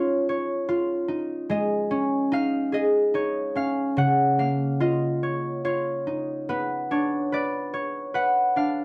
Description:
children's music, lullaby; 73 BPM; 3/4; rubato; A4 = 438 Hz
concert harp; solo; 0.0-8.8 s; C#3 to F#5; -25 LUFS; equal; slapback echo
light reverb; dry, close 1970s-style studio recording; -25 LUFS; mono
0.0-8.8 A section
0.0 C#add9; 1.5 G#sus4; 4.0 F#/C#; 4.8 C#add9; 6.5 Bmadd9

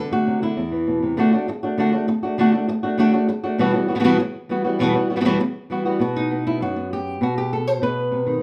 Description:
flamenco; 199 BPM; 4/4; straight; E minor; A4 = 441 Hz
flamenco guitar; solo; 0.0-8.4 s; E2 to C5; -21 LUFS; equal
moderate large studio reverb, RT60 0.8 s; band playing live in one room; -21 LUFS; mono
0.0-1.2 A section; 1.2-6.0 B section; 6.0-8.4 C section
0.0 D; 0.6 E5; 1.2 D; 3.6 Emadd9; 6.0 B

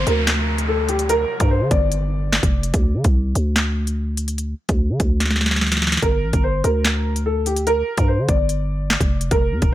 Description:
hip hop, drill; 146 BPM; 4/4; half-time; G minor; A4 = 440 Hz
dark grand piano; melody; 0.0-2.7, 6.0-9.7 s; G4 to D5; -22 LUFS; equal
growling 808-style bass; bass; 0.0-9.7 s; Eb1 to D3; -21 LUFS; equal
downlifter; sound effects; 0.0-2.7 s; -29 LUFS; equal
drill drum kit; drums; 0.1-9.7 s; handclaps, hi-hat, kick drum, snare drum; -19 LUFS; equal
little or no reverb; -17 LUFS; side -14 dB against mid
0.0-9.7 A section
drum fill 5.2-6.0
0.0 Gm; 2.7 N.C.; 6.0 Gm

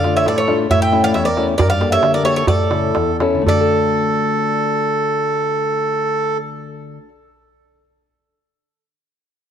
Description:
greek folk, Greek bouzouki band; 111-138 BPM; 2/4; straight; A4 = 440 Hz
Greek bouzouki; melody; 0.0-7.1 s; C#5 to G5; -19 LUFS; right 2 dB
accordion; second line; 0.0-6.4 s; A4 to E5; -20 LUFS; right 2 dB
fingerpicked plugged-in steel-string acoustic guitar; accompaniment; 0.0-7.1 s; E2 to A4; -20 LUFS; left 4 dB
darbuka; percussion; 0.0-3.7 s; -20 LUFS; right 2 dB
moderate plate reverb, RT60 2.4 s; faint mains hum; -14 LUFS; side -8 dB against mid
0.0-3.5 A section; 3.5-5.6 B section
slowing down 1.6-3.5
0.0 Dm; 0.7 A; 1.6 Gmadd9; 2.5 A; 3.5 D

